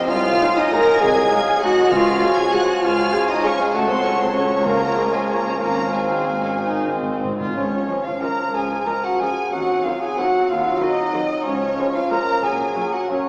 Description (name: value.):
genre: classical.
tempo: 174-213 BPM.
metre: 3/4.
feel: rubato.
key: Db major.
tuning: A4 = 437 Hz.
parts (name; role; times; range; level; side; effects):
mellow clarinet; second line; 0.0-13.3 s; C4 to Ab5; -31 LUFS; equal; none.
rich chamber violin section; second line; 0.0-13.2 s; Ab3 to Bb5; -30 LUFS; equal; none.
mellow French horn section; sustained chords; 0.0-13.3 s; Ab3 to Bb4; -26 LUFS; equal; none.
rich studio cello section; bass; 0.0-12.7 s; Db2 to Bb4; -28 LUFS; equal; none.
clear chamber violin section; melody; 0.1-13.3 s; Db5 to Bb6; -30 LUFS; equal; none.
concert flute; second line; 0.1-13.3 s; Db5 to Bb5; -30 LUFS; equal; none.
dark cor anglais; second line; 0.1-13.3 s; Db4 to Eb5; -29 LUFS; equal; none.
clear bassoon; accompaniment; 0.1-13.3 s; Eb3 to Gb3; -30 LUFS; equal; none.
clear chamber double bass section; bass; 0.1-12.7 s; Ab1 to Eb2; -37 LUFS; equal; none.
mellow tuba; bass; 0.1-7.4 s; Ab1 to Db2; -32 LUFS; equal; none.
rich studio viola section; accompaniment; 0.4-13.2 s; Eb3 to Ab4; -31 LUFS; equal; none.
timpani; percussion; 1.9-2.3, 4.7-8.0 s; Ab2 to Db3; -37 LUFS; equal; none.
room: wet church reverb, RT60 3.3 s.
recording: recorded in a church or concert hall, small speaker sound.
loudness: -19 LUFS.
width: mono.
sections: 0.0-7.6 A section; 7.6-13.3 B section.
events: timpani fill 6.6-7.6.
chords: 0.1 Ab7/C; 1.9 Db; 3.7 Gbm/Db; 4.7 Db; 5.6 Db/Ab; 6.6 Ab; 7.6 Db; 9.5 Cdim/Eb; 11.5 Db; 12.4 Gb/Bb.